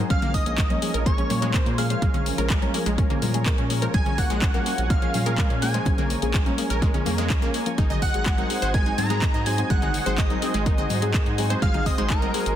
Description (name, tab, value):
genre	progressive house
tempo	125 BPM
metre	4/4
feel	straight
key	Bb minor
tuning	A4 = 440 Hz
part	lush unison pad	sustained chords	0.0-12.6 s	F3 to Ab5	-34 LUFS	right 2 dB	chorus, sidechain pumping
part	deep mellow chord stab	stabs	0.0-12.6 s	F3 to C5	-30 LUFS	left 3 dB	chorus, sidechain pumping, ping-pong delay
part	round analog bass	bass	0.0-12.6 s	Ab1 to Bb2	-28 LUFS	equal	sidechain pumping
part	wide unison lead	melody	0.1-12.5 s	Bb4 to Bb5	-31 LUFS	right 1 dB	cassette tape, ping-pong delay
part	soft synth bell	second line	0.1-12.5 s	Bb5 to Bb6	-35 LUFS	right 1 dB	chorus, sidechain pumping, ping-pong delay
part	wide unison pluck	arpeggios	0.1-12.3 s	Ab3 to Eb5	-30 LUFS	equal	sidechain pumping, ping-pong delay
part	electronic kick drum	drums	0.1-12.2 s	none	-23 LUFS	equal	overdrive
part	house drum kit	drums	0.1-12.6 s	handclaps, hi-hat	-31 LUFS	left 2 dB	overdrive
part	congas	percussion	0.1-12.3 s	none	-33 LUFS	left 4 dB	sidechain pumping on perc
room	light reverb, digital ambience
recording	dense, heavily limited modern master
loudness	-20 LUFS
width	side -11 dB against mid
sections	0.0-12.6 A section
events	none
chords	0.1 Bbm7; 7.8 Ab7